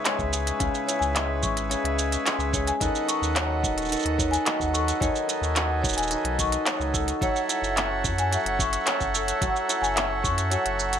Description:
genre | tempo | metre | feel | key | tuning
folktronica | 109 BPM | 4/4 | straight | unclear | A4 = 440 Hz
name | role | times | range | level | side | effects
accordion | sustained chords | 0.0-11.0 s | G#4 to G#5 | -30 LUFS | right 2 dB | vintage 12-bit sampler grit
hammered dulcimer | arpeggios | 0.0-11.0 s | C#3 to A4 | -28 LUFS | equal | digital delay
marimba with medium hard mallets | second line | 0.1-10.6 s | C#5 to C#6 | -31 LUFS | left 4 dB | ping-pong delay
organic electronic drum kit | drums | 0.1-11.0 s | handclaps, hi-hat, shaker | -28 LUFS | right 2 dB | none
warm sub bass | bass | 0.2-11.0 s | D#1 to F#2 | -30 LUFS | equal | none
electronic kick drum | drums | 0.2-10.3 s | none | -31 LUFS | equal | none
room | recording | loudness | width
light reverb | none | -22 LUFS | side -8 dB against mid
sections
0.0-11.0 A section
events
none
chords
0.0 C#m7; 2.8 B7/D#; 7.2 F#m7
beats
0.05 | 0.60 1.15 1.70 2.25 | 2.81 3.35 3.91 4.46 | 5.01 5.56 6.11 6.66 | 7.21 7.76 8.31 8.86 | 9.41 9.96 10.51

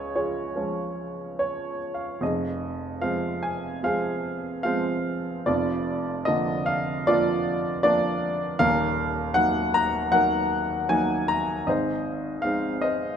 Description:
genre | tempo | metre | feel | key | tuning
classical, lyrical solo piano | 76 BPM | 4/4 | uneven beats, rubato | unclear | A4 = 438 Hz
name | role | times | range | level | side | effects
warm upright piano | solo | 0.0-13.2 s | Eb1 to Bb5 | -23 LUFS | equal | none
room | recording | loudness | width
moderate concert hall reverb, RT60 2.1 s | none | -23 LUFS | side -8 dB against mid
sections
0.0-2.2 A section; 2.2-13.2 B section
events
upright piano fill 1.0-2.2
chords
0.0 Db; 2.2 Fm; 5.5 Bb/F; 8.6 Ebm; 11.7 Ab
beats
0.55 1.39 | 2.21 3.03 3.84 4.64 | 5.46 6.27 7.06 7.83 | 8.59 9.35 10.12 10.89 | 11.67 12.45

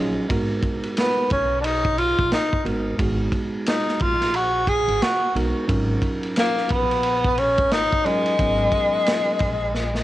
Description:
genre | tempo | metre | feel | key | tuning
hip hop, jazz-hop | 89 BPM | 4/4 | swing 60% on 16ths | G# dorian | A4 = 440 Hz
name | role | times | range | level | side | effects
mellow tine electric piano | accompaniment | 0.0-9.5 s | F#3 to A#4 | -26 LUFS | right 2 dB | cassette tape
upright bass | bass | 0.0-10.0 s | G#1 to B1 | -27 LUFS | equal | tube saturation
vintage drum kit | drums | 0.3-10.0 s | hi-hat, kick drum, ride cymbal, snare drum | -25 LUFS | equal | cassette tape
breathy tenor saxophone | melody | 1.0-10.0 s | G#3 to G#4 | -21 LUFS | equal | cassette tape, tape echo
room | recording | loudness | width
light reverb, small room ambience | home recording on cassette | -19 LUFS | side -15 dB against mid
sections
0.0-10.0 A section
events
drum fill 9.7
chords
0.3 G#m9; 5.7 D#m9/G#; 8.4 G#m11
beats
| 0.30 0.97 1.65 2.32 | 3.00 3.67 4.35 5.02 | 5.69 6.37 7.04 7.72 | 8.39 9.06 9.74

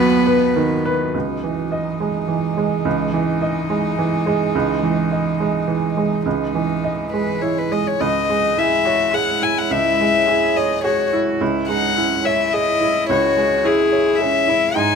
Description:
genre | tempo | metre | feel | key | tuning
neoclassical piano and strings | 106 BPM | 3/4 | rubato | C# minor | A4 = 440 Hz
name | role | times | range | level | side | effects
warm violin | melody | 0.0-15.0 s | D#4 to G#5 | -20 LUFS | left 6 dB | none
rich cello | second line | 0.0-15.0 s | E3 to G#4 | -25 LUFS | right 6 dB | none
bright upright piano | accompaniment | 0.0-15.0 s | C#2 to D#5 | -20 LUFS | right 4 dB | none
deep dark ambient pad | sustained chords | 0.0-15.0 s | E3 to D#5 | -27 LUFS | left 1 dB | chorus, built-in reverb
room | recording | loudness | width
little or no reverb | close, detailed microphones | -16 LUFS | side -6 dB against mid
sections
0.0-1.1 A section; 1.1-8.0 B section; 8.0-15.0 C section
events
none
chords
0.0 B/D#; 1.1 C#madd9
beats
0.56 | 1.15 1.72 2.29 | 2.86 3.42 3.98 | 4.54 5.11 5.67 | 6.25 6.83 7.42 | 8.00 8.57 9.14 | 9.71 10.28 10.84 | 11.41 11.97 12.53 | 13.09 13.65 14.20 | 14.76

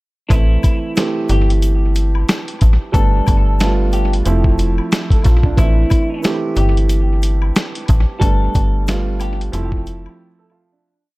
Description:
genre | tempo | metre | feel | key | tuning
hip hop, boom-bap hip-hop | 91 BPM | 4/4 | swing 60% on 16ths | A minor | A4 = 440 Hz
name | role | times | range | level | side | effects
clean electric guitar | melody | 0.3-9.4 s | E4 to A4 | -26 LUFS | left 3 dB | high-pass filter, low-pass filter, tape echo
dark concert grand piano | accompaniment | 0.3-11.0 s | E3 to A4 | -21 LUFS | right 3 dB | high-pass filter, low-pass filter
metallic FM bass | bass | 0.3-10.1 s | F1 to Bb1 | -15 LUFS | equal | none
dusty soul sampler-style drum kit | drums | 0.3-10.1 s | hi-hat, kick drum, snare drum | -16 LUFS | equal | vintage 12-bit sampler grit
egg shaker and woodblock | percussion | 0.3-10.2 s | none | -38 LUFS | left 10 dB | tape echo
room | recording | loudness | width
digital ambience | echo-heavy mix | -13 LUFS | side -21 dB against mid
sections
0.3-10.9 hook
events
fade-out 8.2-10.9; break 10.2-10.9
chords
0.3 Am; 2.9 Gadd9; 4.3 Fmaj7; 5.6 Am; 8.2 Gadd9; 9.5 Fmaj7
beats
| 0.30 0.96 1.62 2.28 | 2.94 3.60 4.26 4.92 | 5.58 6.24 6.90 7.56 | 8.21 8.87 9.53 10.19

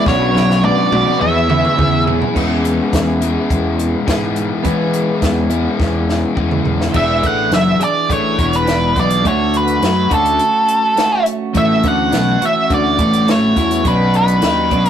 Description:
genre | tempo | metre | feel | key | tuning
indie rock | 104 BPM | 4/4 | straight | E mixolydian | A4 = 440 Hz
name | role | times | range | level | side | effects
octave-fuzz lead guitar | melody | 0.0-2.0, 7.0-14.9 s | A4 to F#5 | -16 LUFS | right 1 dB | distortion
hollow soft pad | sustained chords | 0.0-2.3 s | F#4 to C#6 | -28 LUFS | equal | ensemble chorus
overdriven electric guitar | riff | 0.0-14.9 s | E2 to G#4 | -19 LUFS | left 4 dB | none
twelve-string electric guitar | riff | 0.0-14.9 s | E3 to G#4 | -21 LUFS | right 3 dB | none
fuzz fingered electric bass | bass | 0.1-14.9 s | E1 to E3 | -19 LUFS | equal | overdrive
compact cocktail drum kit | drums | 0.1-14.9 s | crash cymbal, hi-hat, kick drum, snare drum, toms | -20 LUFS | equal | none
room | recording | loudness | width
moderate studio reverb, RT60 0.5 s | rough rehearsal-room recording, warm saturation, lossy compression artefacts | -12 LUFS | side -9 dB against mid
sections
0.0-2.4 A section; 2.4-6.9 B section; 6.9-14.9 C section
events
drum fill 0.1-2.4, 5.8-6.9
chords
0.1 Bmadd9; 1.2 E6; 6.9 E7; 9.2 Dmaj7; 11.6 A6; 13.9 Bmadd9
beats
| 0.06 0.63 1.21 1.78 | 2.35 2.93 3.50 4.07 | 4.65 5.22 5.80 6.37 | 6.95 7.52 8.10 8.67 | 9.25 9.82 10.40 10.97 | 11.55 12.13 12.70 13.28 | 13.85 14.43

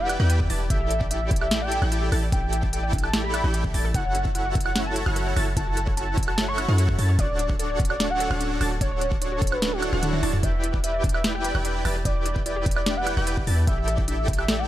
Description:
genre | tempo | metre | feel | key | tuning
future bass | 148 BPM | 4/4 | half-time | E dorian | A4 = 439 Hz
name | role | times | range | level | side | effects
warm velvety synth lead | melody | 0.0-14.7 s | F#4 to C#6 | -30 LUFS | equal | chorus, sidechain pumping, tape echo
wide unison pluck | arpeggios | 0.0-14.7 s | F#6 to A6 | -38 LUFS | equal | sidechain pumping, dub echo
dense compressed supersaw | riff | 0.0-14.7 s | D4 to A5 | -30 LUFS | equal | sidechain pumping
warm 808-style bass | bass | 0.0-14.7 s | D1 to F#2 | -26 LUFS | equal | sidechain pumping
wide unison pluck | arpeggios | 0.1-14.6 s | C#4 to G5 | -37 LUFS | left 4 dB | sidechain pumping, dub echo
trap drum kit | drums | 0.1-14.6 s | hi-hat, snare drum, toms, woodblock | -28 LUFS | right 1 dB | overdrive
electronic kick drum | drums | 0.4-14.4 s | none | -26 LUFS | equal | overdrive
swell | sound effects | 9.7-10.4 s | none | -33 LUFS | right 6 dB | none
room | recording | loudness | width
digital ambience | none | -21 LUFS | side -13 dB against mid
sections
0.0-14.7 A section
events
kick drops out 9.6-10.4; swell 9.7-10.4; drum fill 10.0-10.4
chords
0.0 Em7; 0.7 A7sus4; 3.9 F#m7; 7.2 Dmaj7; 10.4 Em7; 13.7 A7sus4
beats
0.30 | 0.70 1.11 1.51 1.92 | 2.32 2.73 3.13 3.54 | 3.94 4.35 4.76 5.16 | 5.57 5.97 6.38 6.78 | 7.19 7.59 8.00 8.40 | 8.81 9.21 9.62 10.03 | 10.43 10.84 11.24 11.65 | 12.05 12.46 12.86 13.27 | 13.68 14.08 14.49

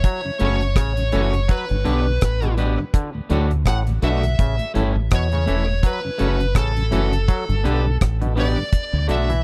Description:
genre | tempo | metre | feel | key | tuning
roots reggae | 83 BPM | 4/4 | swing 57% on 16ths | D major | A4 = 440 Hz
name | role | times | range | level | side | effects
smooth overdriven lead guitar | melody | 0.0-9.4 s | A4 to F#5 | -29 LUFS | equal | tape echo
clav | arpeggios | 0.0-9.4 s | A2 to F#3 | -32 LUFS | equal | tube saturation
deep dub fingered electric bass | bass | 0.0-9.4 s | E1 to E2 | -23 LUFS | equal | none
deep reggae drum kit | drums | 0.0-9.4 s | hi-hat, kick drum, rim click | -21 LUFS | equal | none
mellow tonewheel organ | accompaniment | 0.2-9.4 s | D2 to D4 | -31 LUFS | equal | slow rotary speaker
electric guitar at the edge of break-up | accompaniment | 0.4-9.3 s | A3 to B4 | -30 LUFS | equal | tape echo
room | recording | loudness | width
studio reverb | dry, close 1970s-style studio recording | -20 LUFS | mono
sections
0.0-8.7 A section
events
none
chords
0.0 F#m; 1.5 G; 2.9 D; 4.4 A; 5.8 F#m; 7.3 G; 8.7 D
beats
| 0.04 0.76 1.49 2.21 | 2.94 3.66 4.38 5.11 | 5.83 6.55 7.28 8.00 | 8.72

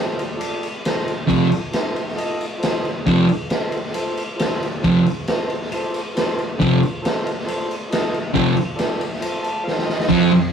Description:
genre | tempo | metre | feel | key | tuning
garage rock duo or trio | 136 BPM | 4/4 | straight | F mixolydian | A4 = 440 Hz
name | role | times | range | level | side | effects
overdriven combo organ | sustained chords | 0.0-10.4 s | F4 to A5 | -27 LUFS | equal | spring reverb
raw garage drum kit | drums | 0.2-10.4 s | crash cymbal, kick drum, ride cymbal, snare drum | -23 LUFS | equal | none
fuzz guitar | riff | 1.3-10.5 s | F2 to F3 | -15 LUFS | right 1 dB | distortion
room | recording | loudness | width
light reverb | rough rehearsal-room recording, tube saturation | -18 LUFS | side -7 dB against mid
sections
0.0-10.1 A section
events
transistor combo organ fill 9.2-10.1; drum fill 9.7-10.1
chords
0.0 F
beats
0.41 0.85 | 1.30 1.74 2.19 2.63 | 3.07 3.52 3.96 4.40 | 4.84 5.28 5.72 6.16 | 6.60 7.04 7.48 7.92 | 8.36 8.79 9.23 9.67 | 10.10

